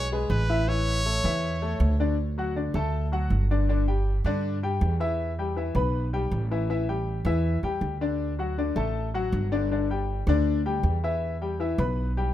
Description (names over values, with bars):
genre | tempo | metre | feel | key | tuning
latin | 159 BPM | 4/4 | straight | D major | A4 = 440 Hz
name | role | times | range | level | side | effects
brilliant trumpet | melody | 0.0-1.8 s | B4 to C#5 | -30 LUFS | equal | none
clear concert grand piano | accompaniment | 0.0-12.3 s | D3 to B5 | -28 LUFS | left 4 dB | none
upright bass | bass | 0.0-12.3 s | G1 to G2 | -26 LUFS | right 1 dB | none
room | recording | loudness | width
small room ambience | rough home demo mix | -24 LUFS | side -12 dB against mid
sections
0.0-2.2 A section; 2.2-12.3 B section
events
none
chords
0.0 E; 0.7 A; 2.2 D; 3.7 G5; 5.2 Em; 6.7 A5; 8.2 D; 9.7 G5; 11.2 Em